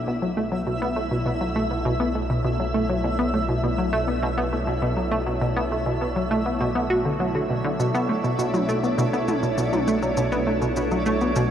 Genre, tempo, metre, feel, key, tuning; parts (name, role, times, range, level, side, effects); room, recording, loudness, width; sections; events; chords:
ambient, sequencer-driven space music; 101 BPM; 4/4; straight; B minor; A4 = 440 Hz
evolving wavetable pad; sustained chords; 0.0-11.5 s; B2 to C#5; -30 LUFS; right 1 dB; phaser, built-in reverb
analog pluck; riff; 0.0-11.4 s; B2 to F#4; -23 LUFS; equal; chorus, cassette tape, analog delay
analog drone; bass; 0.1-11.5 s; B1; -32 LUFS; equal; chorus
twinkling granular texture; texture; 0.0-11.5 s; D4 to E5; -29 LUFS; equal; built-in reverb
electronic shaker and toms; percussion; 7.8-11.5 s; -32 LUFS; left 1 dB; analog delay
wet huge ambient reverb, RT60 8.5 s; worn, warbling old tape, cassette tape, warbly pitch drift; -21 LUFS; side -9 dB against mid
0.0-11.5 A section
fade-in on ambient pad 0.0-11.5
0.0 Bm7